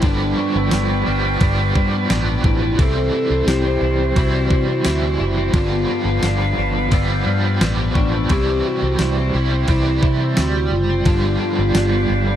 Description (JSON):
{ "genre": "dream pop", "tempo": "87 BPM", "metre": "4/4", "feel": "straight", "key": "unclear", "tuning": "A4 = 440 Hz", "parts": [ { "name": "warbly nostalgic lead", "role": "melody", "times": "0.0-12.4 s", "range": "D4 to A4", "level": "-23 LUFS", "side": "equal", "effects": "chorus, ping-pong delay" }, { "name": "overdriven semi-hollow guitar", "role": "accompaniment", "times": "0.0-12.4 s", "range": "G2 to G4", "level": "-24 LUFS", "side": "right 4 dB", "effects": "tremolo, ensemble chorus" }, { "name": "small flute group", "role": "sustained chords", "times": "0.0-12.4 s", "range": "C4 to G5", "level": "-26 LUFS", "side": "right 2 dB", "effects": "none" }, { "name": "twelve-string electric guitar", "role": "arpeggios", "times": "0.0-12.4 s", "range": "G2 to E4", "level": "-24 LUFS", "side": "left 4 dB", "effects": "wide subtle chorus, ping-pong delay" }, { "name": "vintage muted fingered electric bass", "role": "bass", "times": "0.0-12.4 s", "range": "F#1 to C3", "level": "-20 LUFS", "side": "equal", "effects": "none" }, { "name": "crisp 8-bit digital drum machine", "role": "drums", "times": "0.0-11.9 s", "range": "kick drum, ride cymbal, snare drum, tambourine", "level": "-19 LUFS", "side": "equal", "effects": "overdrive" }, { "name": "glockenspiel with soft plastic mallets", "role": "texture", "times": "0.0-11.6 s", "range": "C6 to A6", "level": "-35 LUFS", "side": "left 3 dB", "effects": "ping-pong delay" } ], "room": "little or no reverb", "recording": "dark, warm production", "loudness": "-16 LUFS", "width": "side -10 dB against mid", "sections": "0.0-12.4 A section", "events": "none", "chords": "0.0 G7; 2.8 C; 5.5 G7; 8.3 C; 11.1 G7" }